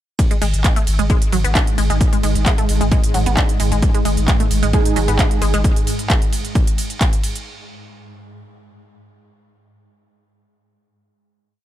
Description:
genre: driving peak-time techno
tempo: 132 BPM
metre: 4/4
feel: straight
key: unclear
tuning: A4 = 440 Hz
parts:
  - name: swarming drone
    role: drone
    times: 1.3-5.7 s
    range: G#2 to G#3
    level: -26 LUFS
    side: right 2 dB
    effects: built-in reverb, sidechain pumping
  - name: electronic kick drum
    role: drums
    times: 0.2-7.1 s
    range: none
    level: -17 LUFS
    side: equal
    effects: none
  - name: techno drum kit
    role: drums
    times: 0.2-7.4 s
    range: handclaps, hi-hat, ride cymbal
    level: -24 LUFS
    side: right 1 dB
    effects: sidechain pumping on hats, sidechain pumping on cymbals
  - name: resonant blip pluck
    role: riff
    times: 0.3-5.6 s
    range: F#3 to D4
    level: -24 LUFS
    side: equal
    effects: phaser, tube saturation, sidechain pumping, digital delay
  - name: saturated sub bass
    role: bass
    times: 0.4-5.6 s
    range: G#1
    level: -19 LUFS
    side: equal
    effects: overdrive, sidechain pumping, low-pass filter
  - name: rave stab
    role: stabs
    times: 4.7-5.6 s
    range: G#3 to G#4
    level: -24 LUFS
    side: right 6 dB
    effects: chorus, built-in reverb, sidechain pumping, tape echo
room: digital ambience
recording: none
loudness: -14 LUFS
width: side -12 dB against mid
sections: 0.2-7.5 drop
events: drop 0.2-7.5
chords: 0.2 G#5

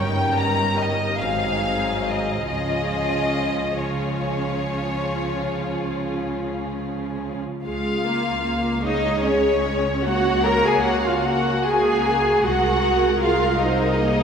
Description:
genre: classical, slow romantic movement for string orchestra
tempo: 46-53 BPM (dotted quarters)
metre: 12/8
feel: rubato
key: Db major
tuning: A4 = 441 Hz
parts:
  - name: muted studio violin section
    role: melody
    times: 0.0-14.2 s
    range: Bb4 to Bb5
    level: -26 LUFS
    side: left 4 dB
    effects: none
  - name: muted studio violin section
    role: second line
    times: 0.0-14.2 s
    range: Eb4 to Bb5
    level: -26 LUFS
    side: left 3 dB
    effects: none
  - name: muted studio viola section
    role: accompaniment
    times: 0.0-14.2 s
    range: F3 to Ab4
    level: -26 LUFS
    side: equal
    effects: none
  - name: muted studio cello section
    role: bass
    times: 0.0-14.2 s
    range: G2 to Bb4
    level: -25 LUFS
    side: right 3 dB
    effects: none
  - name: muted studio double bass section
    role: bass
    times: 0.0-14.2 s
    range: G1 to Db2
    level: -28 LUFS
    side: right 2 dB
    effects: none
room: wet church reverb, RT60 3.7 s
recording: recorded in a church or concert hall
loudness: -19 LUFS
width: side -7 dB against mid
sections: 0.0-7.6 A section; 7.6-14.2 B section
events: none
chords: 0.0 Eb7/G; 1.2 Ab7; 2.5 Db; 10.0 Gbadd9/Db; 12.4 Ab7/C

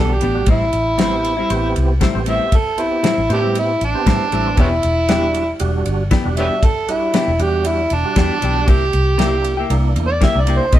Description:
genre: straight-eighth soul blues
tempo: 117 BPM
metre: 4/4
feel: straight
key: E minor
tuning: A4 = 439 Hz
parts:
  - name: overdriven harmonica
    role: melody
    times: 0.0-10.8 s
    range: B3 to E5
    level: -18 LUFS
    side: right 1 dB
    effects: none
  - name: percussive tonewheel organ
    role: accompaniment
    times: 0.0-10.7 s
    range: G3 to G4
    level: -25 LUFS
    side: right 4 dB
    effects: slow rotary speaker, overdrive, chorus vibrato
  - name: direct-recorded clean electric guitar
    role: stabs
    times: 0.0-10.8 s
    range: A2 to G4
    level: -23 LUFS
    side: left 5 dB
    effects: none
  - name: vintage muted fingered electric bass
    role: bass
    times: 0.0-10.8 s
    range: E1 to A2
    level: -20 LUFS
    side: equal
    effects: none
  - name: damped 70s drum kit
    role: drums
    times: 0.2-10.8 s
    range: kick drum, ride cymbal, snare drum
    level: -18 LUFS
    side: equal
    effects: none
room: moderate stone room reverb, RT60 1.3 s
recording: band playing live in one room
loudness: -14 LUFS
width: side -13 dB against mid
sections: 0.0-10.8 A section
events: harmonica solo 0.0-10.8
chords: 0.5 Am7; 4.6 Em7; 8.7 C7

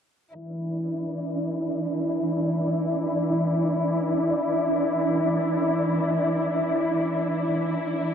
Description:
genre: trip hop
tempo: free time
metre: none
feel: none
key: unclear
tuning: A4 = 440 Hz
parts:
  - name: dark studio string section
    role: sustained chords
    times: 0.4-8.1 s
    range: E3 to E4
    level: -24 LUFS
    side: left 1 dB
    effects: none
  - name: flickering grainy texture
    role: texture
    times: 0.7-8.1 s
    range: D4 to D5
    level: -27 LUFS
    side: right 1 dB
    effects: built-in reverb
room: small room ambience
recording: dry, gritty hardware recording, low-pass filter, lossy compression artefacts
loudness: -23 LUFS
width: side -8 dB against mid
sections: 0.4-8.1 A section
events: filter sweep 0.4-8.1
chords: 0.4 Dsus2/E

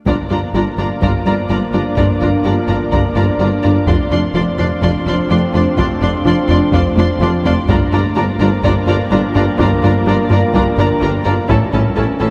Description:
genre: cinematic, hybrid orchestral and electronic film score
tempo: 126 BPM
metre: 4/4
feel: straight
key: unclear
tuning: A4 = 440 Hz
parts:
  - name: rich symphonic violin section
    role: second line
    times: 0.1-12.3 s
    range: A4 to C6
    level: -25 LUFS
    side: equal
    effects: none
  - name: warm symphonic viola section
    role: accompaniment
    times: 0.1-12.3 s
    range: C#4 to F4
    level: -23 LUFS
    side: equal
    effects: none
  - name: glassy FM pad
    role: sustained chords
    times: 0.9-12.3 s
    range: G3 to D5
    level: -23 LUFS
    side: equal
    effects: ensemble chorus, built-in reverb
  - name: warm French horn section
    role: sustained chords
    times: 0.1-12.3 s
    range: E3 to C#4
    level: -25 LUFS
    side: equal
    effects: none
  - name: plucky analog bass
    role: riff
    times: 0.1-12.3 s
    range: F2 to A3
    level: -21 LUFS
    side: equal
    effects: none
  - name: dark tuba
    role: bass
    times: 0.1-12.3 s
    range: F1 to A1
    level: -26 LUFS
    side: equal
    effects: none
  - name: rich symphonic double bass section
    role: bass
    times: 0.1-12.3 s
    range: F1 to A1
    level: -25 LUFS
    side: equal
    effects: none
  - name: warm symphonic cello section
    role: bass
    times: 0.1-12.3 s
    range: F2 to A2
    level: -25 LUFS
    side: equal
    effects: none
  - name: taiko ensemble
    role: drums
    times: 0.1-11.9 s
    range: none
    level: -25 LUFS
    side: equal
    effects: none
room: wet concert hall reverb, RT60 2.6 s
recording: none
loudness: -15 LUFS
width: mono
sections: 0.1-12.3 A section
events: drum fill 7.0-7.7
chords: 0.1 Gm7; 3.9 Dm7/F; 7.7 Gm7; 11.5 A

